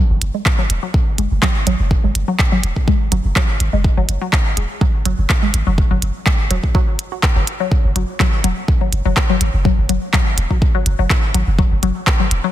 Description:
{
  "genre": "minimal techno",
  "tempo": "124 BPM",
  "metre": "4/4",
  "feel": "swing 53% on 16ths",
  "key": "unclear",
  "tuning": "A4 = 440 Hz",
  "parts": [
    { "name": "hollow square pluck", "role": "riff", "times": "0.0-12.5 s", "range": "F#3 to F#4", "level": "-22 LUFS", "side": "left 3 dB", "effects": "chorus, phaser, sidechain pumping, dub echo" },
    { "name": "punchy sub bass", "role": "bass", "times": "0.1-12.4 s", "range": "E1 to G#1", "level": "-18 LUFS", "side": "equal", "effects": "sidechain pumping" },
    { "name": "minimal click drum kit", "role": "drums", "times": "0.2-12.4 s", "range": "handclaps, hi-hat", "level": "-21 LUFS", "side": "equal", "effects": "overdrive" },
    { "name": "electronic kick drum", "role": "drums", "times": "0.5-12.2 s", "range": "none", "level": "-15 LUFS", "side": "equal", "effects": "overdrive" }
  ],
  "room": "little or no reverb",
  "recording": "dense, heavily limited modern master",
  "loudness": "-14 LUFS",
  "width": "side -13 dB against mid",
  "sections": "0.0-12.5 A section",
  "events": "none",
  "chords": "none"
}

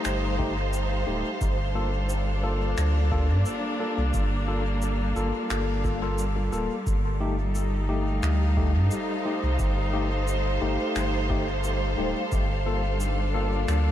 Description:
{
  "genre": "ambient dub",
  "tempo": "88 BPM",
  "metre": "4/4",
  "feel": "straight",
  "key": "G minor",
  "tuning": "A4 = 440 Hz",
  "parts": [
    { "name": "warm studio string section", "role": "sustained chords", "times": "0.0-13.9 s", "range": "G3 to F5", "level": "-29 LUFS", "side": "equal", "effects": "none" },
    { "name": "tine electric piano", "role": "stabs", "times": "0.0-13.9 s", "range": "A3 to A4", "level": "-31 LUFS", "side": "left 3 dB", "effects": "medium stereo tremolo, dub echo" },
    { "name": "electronic finger snaps and cabasa", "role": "drums", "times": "0.0-13.8 s", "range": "none", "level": "-40 LUFS", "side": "equal", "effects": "dub echo" },
    { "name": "warm sub bass", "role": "bass", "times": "0.1-13.9 s", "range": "D1 to G2", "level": "-26 LUFS", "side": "equal", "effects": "none" },
    { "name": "electronic kick drum", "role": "drums", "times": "0.4-12.5 s", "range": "none", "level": "-30 LUFS", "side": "equal", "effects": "none" }
  ],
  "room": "light reverb",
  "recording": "none",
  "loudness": "-23 LUFS",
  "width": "side -11 dB against mid",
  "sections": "0.0-13.9 A section",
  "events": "none",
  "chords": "0.0 F7/G; 1.4 Gm7; 6.9 F7/G; 12.3 Gm7"
}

